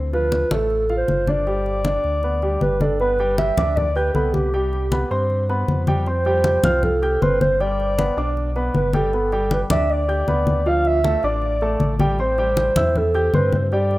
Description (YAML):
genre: latin, Cuban son and guajira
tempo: 157 BPM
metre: 4/4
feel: straight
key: unclear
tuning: A4 = 439 Hz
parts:
  - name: warm concert grand piano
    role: arpeggios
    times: 0.0-14.0 s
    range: F3 to G6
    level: -24 LUFS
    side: right 1 dB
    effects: slapback echo
  - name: sub bass with octave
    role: bass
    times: 0.0-14.0 s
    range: G1 to G2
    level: -23 LUFS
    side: equal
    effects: none
  - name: dark clarinet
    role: melody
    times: 0.1-14.0 s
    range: G4 to F5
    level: -21 LUFS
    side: right 1 dB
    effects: none
  - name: congas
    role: percussion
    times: 0.1-14.0 s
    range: none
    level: -23 LUFS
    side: left 2 dB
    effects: none
room: light reverb, studio ambience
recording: rough home demo mix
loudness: -17 LUFS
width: side -18 dB against mid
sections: 0.0-3.0 A section; 3.0-14.0 B section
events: none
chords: 0.0 Dm7; 1.5 G; 4.5 C5; 6.1 Fadd9; 7.6 G; 10.7 Dm; 12.2 Am7